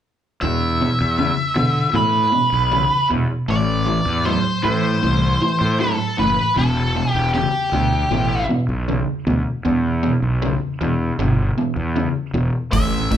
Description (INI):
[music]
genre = blues rock power trio and southern rock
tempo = 78 BPM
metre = 4/4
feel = straight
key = E minor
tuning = A4 = 439 Hz
[part]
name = octave-fuzz lead guitar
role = melody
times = 0.4-13.2 s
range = G4 to E5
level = -20 LUFS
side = equal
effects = distortion, slapback echo
[part]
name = overdriven semi-hollow guitar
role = riff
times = 0.4-13.2 s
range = E2 to F#3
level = -21 LUFS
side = equal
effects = harmonic tremolo
[part]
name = fuzz fingered electric bass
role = bass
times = 0.4-13.2 s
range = E1 to D3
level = -22 LUFS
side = equal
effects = overdrive
[part]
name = oversized low-tuned drum kit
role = drums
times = 12.7-13.2 s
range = hi-hat, kick drum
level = -20 LUFS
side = equal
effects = none
[sound]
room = moderate large studio reverb, RT60 0.8 s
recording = band playing live in one room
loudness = -17 LUFS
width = side -10 dB against mid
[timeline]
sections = 0.4-13.2 A section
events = none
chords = 0.4 E5; 3.5 Am; 6.6 E5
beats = | 0.43 1.20 1.97 2.74 | 3.50 4.27 5.04 5.81 | 6.57 7.34 8.11 8.88 | 9.65 10.41 11.18 11.95 | 12.72